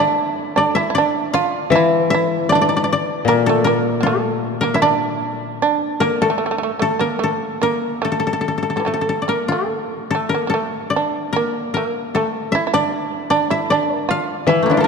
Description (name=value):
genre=japanese traditional, Japanese chamber music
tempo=75 BPM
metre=4/4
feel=uneven beats, rubato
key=A miyako bushi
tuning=A4 = 444 Hz
part: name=koto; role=melody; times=0.0-14.9 s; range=A3 to F5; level=-20 LUFS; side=left 4 dB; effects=none
part: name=shamisen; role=second line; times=0.0-14.9 s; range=D3 to E5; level=-20 LUFS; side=right 5 dB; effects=none
part: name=koto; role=accompaniment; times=1.7-5.6, 14.5-14.9 s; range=Bb2 to E3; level=-18 LUFS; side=left 4 dB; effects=none
room=wet church reverb, RT60 3.8 s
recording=dark, warm production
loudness=-16 LUFS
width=side -5 dB against mid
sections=0.0-14.9 A section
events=none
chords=none